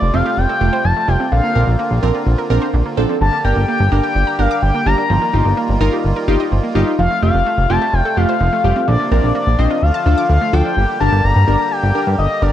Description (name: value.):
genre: pop.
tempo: 127 BPM.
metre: 4/4.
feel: straight.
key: G minor.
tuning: A4 = 441 Hz.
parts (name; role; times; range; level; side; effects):
expressive synth lead; melody; 0.0-12.5 s; D5 to Bb5; -18 LUFS; left 3 dB; chorus, digital delay.
accordion; sustained chords; 0.0-12.5 s; C3 to G4; -25 LUFS; right 1 dB; light tremolo tuning.
chorused synth bass; bass; 0.0-12.5 s; F1 to G2; -14 LUFS; equal; none.
warm analog keys; accompaniment; 0.1-12.5 s; A3 to C5; -22 LUFS; right 1 dB; chorus, phaser.
analog pluck; arpeggios; 0.1-10.7 s; D3 to D6; -24 LUFS; right 5 dB; chorus, digital delay.
room: light reverb.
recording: dark, warm production.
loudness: -13 LUFS.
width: side -11 dB against mid.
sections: 0.0-10.8 A section; 10.8-12.5 B section.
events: none.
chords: 0.0 Fadd9; 1.3 Bbadd9; 3.2 Gm; 5.1 Ebadd9/G; 7.0 Fadd9; 8.9 Bbadd9; 9.8 Dm; 10.8 Gm.